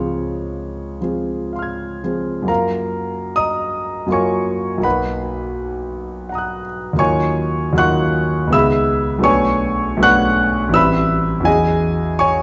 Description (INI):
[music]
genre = classical, impressionist solo piano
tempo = 56-88 BPM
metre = 3/4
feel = rubato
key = F# major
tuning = A4 = 440 Hz
[part]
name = clear concert grand piano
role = solo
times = 0.0-12.4 s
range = A1 to Ab6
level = -18 LUFS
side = equal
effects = none
[sound]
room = wet recital hall reverb, RT60 1.7 s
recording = nothing above 7.7 kHz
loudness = -18 LUFS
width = mono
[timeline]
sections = 0.0-2.5 A section; 2.5-12.4 B section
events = none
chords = 0.0 Dbmaj7; 2.5 F#maj7; 4.8 Bmaj7; 7.0 D#m9; 8.5 C#m9; 9.3 Bm9; 10.8 Am9; 11.5 E69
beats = 0.50 1.54 | 2.49 3.37 4.12 | 4.85 5.57 6.30 | 6.99 7.79 8.54 | 9.25 10.04 10.75 | 11.47 12.21